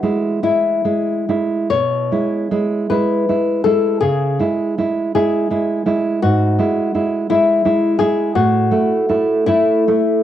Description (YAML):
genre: romantic duo for nylon-string guitar and classical guitar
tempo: 46-58 BPM (dotted quarters)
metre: 12/8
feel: rubato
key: E major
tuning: A4 = 441 Hz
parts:
  - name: flamenco guitar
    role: melody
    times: 0.0-10.2 s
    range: E4 to C#5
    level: -18 LUFS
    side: left 6 dB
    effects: none
  - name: nylon-string guitar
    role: accompaniment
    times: 0.0-10.2 s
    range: G#2 to E4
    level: -16 LUFS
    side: right 3 dB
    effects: none
room: wet small room reverb, RT60 0.6 s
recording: home recording on cassette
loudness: -14 LUFS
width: side -11 dB against mid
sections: 0.0-10.2 A section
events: none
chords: 0.0 E; 4.0 C#m (rootless); 8.4 F#m7/A